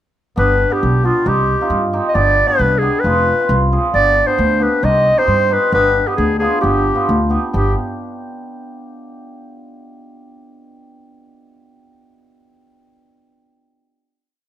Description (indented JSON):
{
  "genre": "klezmer",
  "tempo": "134 BPM",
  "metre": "2/4",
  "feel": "straight",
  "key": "G phrygian dominant",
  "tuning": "A4 = 440 Hz",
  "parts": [
    { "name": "warm clarinet", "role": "melody", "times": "0.4-7.8 s", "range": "F4 to Eb5", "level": "-15 LUFS", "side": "equal", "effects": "plate reverb" },
    { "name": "cimbalom", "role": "accompaniment", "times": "0.4-7.7 s", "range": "B3 to B4", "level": "-21 LUFS", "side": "right 2 dB", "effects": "none" },
    { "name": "upright bass", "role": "bass", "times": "0.4-7.7 s", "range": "F1 to G2", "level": "-18 LUFS", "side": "equal", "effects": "none" }
  ],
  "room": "light reverb",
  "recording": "none",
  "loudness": "-13 LUFS",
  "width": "side -12 dB against mid",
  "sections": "0.4-7.5 A section; 7.5-8.4 final chord",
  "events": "none",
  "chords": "0.4 G; 1.3 Cm; 2.2 G; 3.0 Fm; 3.9 G; 4.8 Cm; 5.7 G"
}